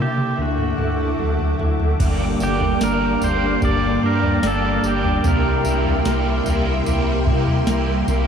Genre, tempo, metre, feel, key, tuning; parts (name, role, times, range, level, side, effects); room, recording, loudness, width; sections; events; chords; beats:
dream pop; 74 BPM; 4/4; straight; G dorian; A4 = 440 Hz
pedal steel guitar; melody; 0.0-6.8 s; F#4 to D5; -25 LUFS; right 2 dB; ping-pong delay
string machine, violas; sustained chords; 0.0-8.3 s; Bb3 to D6; -24 LUFS; equal; ensemble chorus
clean electric guitar; arpeggios; 0.0-8.3 s; G2 to E4; -23 LUFS; left 1 dB; ensemble chorus, ping-pong delay
saturated sub bass; bass; 0.0-8.3 s; G1 to C3; -23 LUFS; equal
soft vintage rhythm box; drums; 0.2-8.3 s; crash cymbal, kick drum, snare drum, tambourine, toms; -24 LUFS; equal
crunchy overdriven guitar; accompaniment; 2.0-8.3 s; G2 to G4; -28 LUFS; right 4 dB; harmonic tremolo, ensemble chorus
wet huge ambient reverb, RT60 8.5 s; dreamy mix soaked in reverb; -17 LUFS; side -7 dB against mid
0.0-2.0 A section; 2.0-8.3 B section
drum fill 0.0-2.0
0.4 Dadd9; 2.0 Gm; 5.2 C7
0.38 1.19 | 2.00 2.81 3.62 4.43 | 5.25 6.06 6.87 7.68